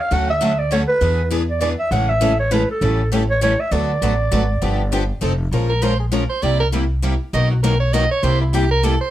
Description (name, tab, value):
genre	acoustic string swing (jazz manouche)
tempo	200 BPM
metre	3/4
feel	swing 58% on 8ths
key	unclear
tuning	A4 = 440 Hz
part	growling clarinet	melody	0.0-5.2 s	A4 to F#5	-20 LUFS	right 2 dB	none
part	picked steel-string acoustic guitar	accompaniment	0.1-8.9 s	B2 to Bb4	-24 LUFS	left 5 dB	none
part	picked steel-string acoustic guitar	accompaniment	0.1-8.9 s	B2 to B4	-26 LUFS	right 4 dB	none
part	upright bass	bass	0.1-9.0 s	F1 to E2	-19 LUFS	equal	none
part	clear soprano saxophone	second line	5.7-9.1 s	E4 to D#5	-20 LUFS	right 3 dB	none
room	light reverb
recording	none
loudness	-16 LUFS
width	side -13 dB against mid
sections	0.0-5.5 A section; 5.5-9.1 B section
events	soprano saxophone solo 5.5-9.1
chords	0.1 Dmaj7; 1.0 E7; 1.9 Amaj7; 2.8 A7; 3.7 D6; 4.6 G7; 5.2 F7; 5.5 Bbm7; 6.4 C7; 7.3 Bmaj7; 8.2 C7